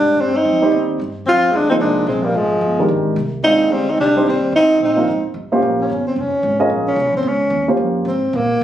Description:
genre	jazz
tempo	221 BPM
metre	4/4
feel	swing 60% on 8ths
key	Bb dorian from 5.6 s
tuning	A4 = 444 Hz
part	dark tenor saxophone	melody	0.0-8.6 s	Ab3 to F4	-16 LUFS	equal	none
part	warm alto saxophone	second line	0.0-5.2 s	F3 to C4	-22 LUFS	left 3 dB	none
part	upright bass	bass	0.0-8.6 s	F1 to Bb2	-26 LUFS	equal	none
part	dark baby grand piano	accompaniment	0.6-8.0 s	Eb3 to Eb5	-18 LUFS	right 1 dB	none
room	light reverb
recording	recorded on a phone in the room, club reverb, compression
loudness	-14 LUFS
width	side -11 dB against mid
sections	0.0-5.6 A section; 5.6-8.6 B section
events	tenor saxophone solo 5.6-8.6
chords	0.0 Cm; 1.3 Fm9; 3.4 Cm; 5.6 Bbm69

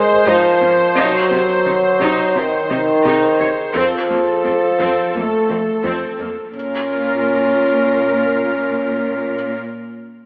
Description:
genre	cinematic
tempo	86 BPM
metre	4/4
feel	straight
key	Bb minor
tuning	A4 = 440 Hz
part	rich symphonic viola section	accompaniment	0.0-9.6 s	Bb3 to Db5	-22 LUFS	equal	none
part	dark French horn section	sustained chords	0.0-9.5 s	Eb3 to Db4	-18 LUFS	equal	none
part	tight sequenced synth	arpeggios	0.0-6.4 s	C3 to F4	-38 LUFS	equal	none
part	rubbery square bass	riff	0.0-6.4 s	C2 to Ab3	-39 LUFS	equal	none
part	felt-muted upright piano	texture	0.0-6.6 s	Ab4 to Bb4	-32 LUFS	equal	none
part	warm studio cello section	bass	0.3-9.5 s	F2 to C3	-28 LUFS	equal	none
room	wet scoring stage reverb, RT60 1.8 s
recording	AM radio sound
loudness	-17 LUFS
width	mono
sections	0.0-6.5 A section; 6.5-9.3 B section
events	none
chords	0.0 Ab; 1.0 Cdim; 3.7 F; 6.5 Bbm

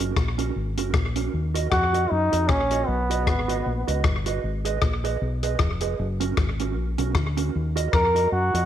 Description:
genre	ska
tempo	154 BPM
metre	4/4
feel	swing 57% on 8ths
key	Eb minor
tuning	A4 = 440 Hz
part	mellow electric guitar	accompaniment	0.0-8.7 s	Db4 to Eb5	-30 LUFS	right 11 dB	slapback echo
part	fingered electric bass	bass	0.0-8.7 s	F1 to Gb2	-26 LUFS	equal	none
part	compact cocktail drum kit	drums	0.2-8.6 s	hi-hat, kick drum, rim click	-25 LUFS	left 2 dB	slapback echo
part	clear trombone	melody	1.7-4.0, 7.9-8.7 s	B3 to Bb4	-23 LUFS	equal	none
room	moderate echo chamber reverb, RT60 1.4 s, small room ambience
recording	1960s-style stereo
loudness	-21 LUFS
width	side -10 dB against mid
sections	0.0-8.7 A section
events	none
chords	0.0 Gb; 1.3 Ebm; 2.9 B; 4.4 Abm; 6.0 Gb; 7.5 Ebm

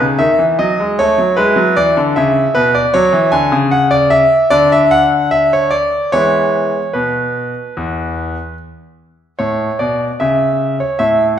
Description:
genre	classical-period piano sonatina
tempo	75 BPM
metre	4/4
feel	rubato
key	unclear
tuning	A4 = 437 Hz
part	bright concert grand piano	solo	0.0-11.4 s	E2 to G#5	-11 LUFS	equal	none
room	wet recital hall reverb, RT60 1.4 s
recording	recorded in a church or concert hall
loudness	-11 LUFS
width	side -9 dB against mid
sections	0.0-11.4 A section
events	none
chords	0.0 B7 (rootless); 1.4 E5; 2.9 F#5; 4.5 N.C.; 6.1 E; 9.4 A

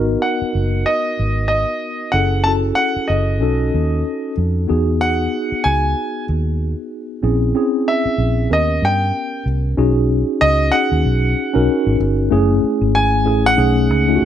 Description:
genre	lush 1970s-style soul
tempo	94 BPM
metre	4/4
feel	swing 58% on 16ths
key	unclear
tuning	A4 = 440 Hz
part	mellow tine electric piano	accompaniment	0.0-14.2 s	A3 to A#4	-19 LUFS	left 1 dB	medium stereo tremolo
part	vintage muted fingered electric bass	bass	0.0-14.2 s	F#1 to G2	-18 LUFS	right 1 dB	none
part	clear concert grand piano	melody	0.2-14.2 s	D#5 to A5	-19 LUFS	equal	none
room	light reverb, small room ambience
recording	none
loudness	-15 LUFS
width	side -10 dB against mid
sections	0.0-9.8 A section; 9.8-14.2 B section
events	none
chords	0.0 G#m7; 2.1 F#m9; 3.4 B7; 4.7 Emaj9; 7.2 A#m7b5; 8.5 D#7b13; 9.8 B69; 12.3 F#m9; 13.6 B13

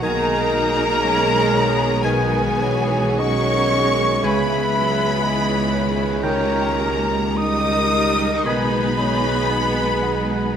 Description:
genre	classical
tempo	50-61 BPM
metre	4/4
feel	rubato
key	G# minor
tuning	A4 = 440 Hz
part	rich studio violin section	melody	0.0-10.6 s	G#5 to D#6	-26 LUFS	left 2 dB	none
part	dark clarinet	second line	0.0-10.6 s	A#4 to F#5	-29 LUFS	left 2 dB	none
part	hollow concert flute	second line	0.0-10.6 s	G#5 to D#6	-25 LUFS	left 2 dB	none
part	rich symphonic violin section	second line	0.0-10.6 s	C#4 to B4	-29 LUFS	left 1 dB	none
part	warm oboe	second line	0.0-8.9 s	G5 to G#5	-31 LUFS	equal	none
part	rich chamber viola section	accompaniment	0.0-10.6 s	D#3 to D#4	-26 LUFS	right 2 dB	none
part	warm bassoon	accompaniment	0.0-8.9 s	C#3 to D#3	-29 LUFS	right 2 dB	none
part	clear French horn section	sustained chords	0.0-10.6 s	C#3 to G#4	-28 LUFS	right 1 dB	none
part	concert harp	arpeggios	0.0-10.6 s	B2 to G#5	-30 LUFS	left 9 dB	none
part	dark trumpet section	stabs	0.0-10.6 s	G#4 to D#5	-25 LUFS	equal	none
part	dark symphonic double bass section	bass	0.0-10.5 s	B1 to C#2	-28 LUFS	right 2 dB	none
part	mellow tuba	bass	0.0-10.6 s	B1 to C#2	-27 LUFS	right 2 dB	none
part	warm studio cello section	bass	0.0-10.5 s	G#3 to D#4	-28 LUFS	right 3 dB	none
room	wet scoring stage reverb, RT60 1.6 s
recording	none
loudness	-17 LUFS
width	side -8 dB against mid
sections	0.0-10.6 A section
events	none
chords	0.0 G#m/B; 4.2 C#m; 6.2 D#7/C#; 8.5 G#m/B

